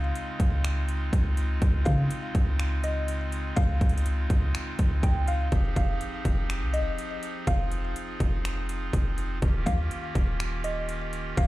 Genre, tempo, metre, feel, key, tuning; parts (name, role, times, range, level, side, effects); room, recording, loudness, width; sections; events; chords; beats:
hip hop, atmospheric cloud-rap; 123 BPM; 4/4; half-time; A4 = 440 Hz
mallet-like synth pluck; melody; 0.0-11.5 s; Eb5 to G5; -36 LUFS; left 1 dB; chorus, ping-pong delay
pipe organ, clarinet reed; sustained chords; 0.0-11.5 s; Db3 to Ab4; -35 LUFS; right 1 dB; sidechain pumping
clean 808-style bass; bass; 0.0-11.5 s; Eb1 to Db3; -27 LUFS; equal
trap drum kit; drums; 0.2-11.5 s; finger snaps, hi-hat, kick drum; -27 LUFS; equal
little or no reverb; played on a big sound system in a bare room, large studio reverb; -25 LUFS; side -17 dB against mid
0.0-11.5 A section
0.0 Dbmaj7; 5.5 Fm7; 9.4 Eb7
0.15 0.64 1.13 | 1.62 2.11 2.59 3.08 | 3.57 4.06 4.54 5.03 | 5.52 6.01 6.50 6.98 | 7.47 7.96 8.45 8.94 | 9.42 9.91 10.40 10.89 | 11.37